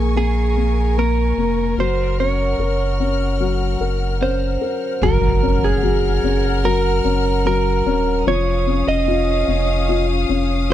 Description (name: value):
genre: pop ballad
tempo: 74 BPM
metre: 4/4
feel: straight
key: unclear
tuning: A4 = 440 Hz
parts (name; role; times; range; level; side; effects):
- direct-recorded clean electric guitar; melody; 0.0-10.1 s; Ab4 to Eb5; -21 LUFS; right 5 dB; slapback echo
- dark upright piano; accompaniment; 0.0-10.7 s; F3 to Bb4; -22 LUFS; left 10 dB; none
- warm studio string section; sustained chords; 0.0-10.7 s; Db4 to F6; -27 LUFS; left 2 dB; none
- warm sub bass; bass; 0.0-10.7 s; Eb1 to Bb1; -20 LUFS; right 1 dB; none
- impact; sound effects; 5.0-8.3 s; none; -24 LUFS; right 1 dB; none
room: little or no reverb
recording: dry, close 1970s-style studio recording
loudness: -16 LUFS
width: side -11 dB against mid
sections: 0.0-5.0 A section; 5.0-10.7 B section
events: impact 5.0-8.3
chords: 0.0 Bbm7; 1.8 Gbmaj7; 8.3 Dbadd9/F